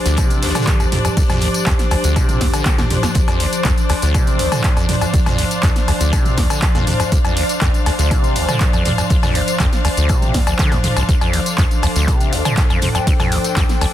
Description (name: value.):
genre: acid house.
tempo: 121 BPM.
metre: 4/4.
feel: straight.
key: D minor pentatonic.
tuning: A4 = 441 Hz.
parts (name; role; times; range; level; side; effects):
warbly tape-like pad; sustained chords; 0.0-13.9 s; F3 to D5; -24 LUFS; right 1 dB; chorus, built-in reverb, sidechain pumping.
clear symphonic string section; texture; 0.0-13.9 s; D4 to G5; -24 LUFS; left 4 dB; sidechain pumping.
acid bass, saw; riff; 0.1-13.9 s; C2 to D3; -20 LUFS; equal; tube saturation, analog chorus, ping-pong delay.
punchy analog drum machine; drums; 0.1-13.9 s; cowbell, handclaps, hi-hat, snare drum, tambourine, toms; -21 LUFS; equal; none.
warm soul drum kit; drums; 0.1-13.9 s; hi-hat, snare drum; -33 LUFS; left 3 dB; none.
electronic kick drum; drums; 0.2-13.7 s; none; -17 LUFS; equal; none.
room: light reverb, studio ambience.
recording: dense, heavily limited modern master.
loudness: -14 LUFS.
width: side -12 dB against mid.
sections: 0.0-13.9 A section.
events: drum fill 2.7-3.2.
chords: 0.0 Dm7.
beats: 0.18 0.67 | 1.17 1.67 2.16 2.66 | 3.15 3.65 4.14 4.64 | 5.14 5.63 6.13 6.62 | 7.12 7.62 8.11 8.61 | 9.10 9.60 10.10 10.59 | 11.09 11.58 12.08 12.57 | 13.07 13.57.